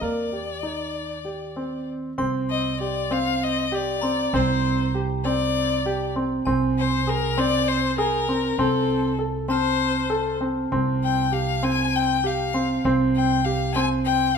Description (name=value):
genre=contemporary instrumental, chamber music in an uneven meter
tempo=197 BPM (eighths)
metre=7/8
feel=straight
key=unclear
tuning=A4 = 440 Hz
part: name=clear violin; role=melody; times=0.0-14.4 s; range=A4 to Ab5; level=-25 LUFS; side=left 7 dB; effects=none
part: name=dark baby grand piano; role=arpeggios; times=0.0-14.3 s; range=Bb3 to A4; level=-24 LUFS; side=right 1 dB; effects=none
part: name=upright bass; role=bass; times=0.0-14.4 s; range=C2 to Eb2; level=-28 LUFS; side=right 4 dB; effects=none
part: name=glockenspiel with brass mallets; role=texture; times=2.2-13.1 s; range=Ab5 to C7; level=-36 LUFS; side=left 6 dB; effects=none
room=moderate recital hall reverb, RT60 1.4 s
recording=minimal, uncompressed stereo recording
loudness=-21 LUFS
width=side -6 dB against mid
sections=0.0-2.2 A section; 2.2-14.4 B section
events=none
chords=0.0 Ebmaj7; 2.2 Gsus4/C; 6.5 Bb7sus2/C; 8.6 F/C; 10.7 G7sus4/C